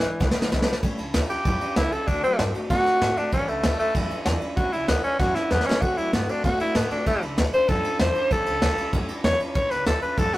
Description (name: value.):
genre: rockabilly.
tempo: 192 BPM.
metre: 4/4.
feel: straight.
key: A mixolydian.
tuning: A4 = 440 Hz.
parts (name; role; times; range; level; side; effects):
raspy tenor saxophone; melody; 0.0-10.4 s; E3 to C#5; -24 LUFS; equal; tape echo.
picked steel-string acoustic guitar; accompaniment; 0.0-10.4 s; E2 to F#4; -33 LUFS; left 1 dB; none.
upright bass; bass; 0.0-10.4 s; A1 to B2; -29 LUFS; equal; none.
vintage brush drum kit; drums; 0.0-10.4 s; kick drum, ride cymbal, snare drum; -25 LUFS; equal; none.
room: light reverb.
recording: rough rehearsal-room recording, tube saturation.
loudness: -21 LUFS.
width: side -16 dB against mid.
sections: 0.8-10.4 A section.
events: drum fill 0.0-0.8, 5.5-5.8; tenor saxophone solo 0.8-10.4.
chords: 0.0 E7; 0.8 A7; 2.1 D7; 3.3 A7; 5.8 D7; 7.1 A7.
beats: 0.21 0.52 | 0.83 1.14 1.45 1.77 | 2.08 2.39 2.70 3.01 | 3.33 3.64 3.95 4.26 | 4.57 4.88 5.20 5.51 | 5.82 6.13 6.44 6.75 | 7.07 7.38 7.69 8.00 | 8.31 8.62 8.94 9.25 | 9.56 9.87 10.18.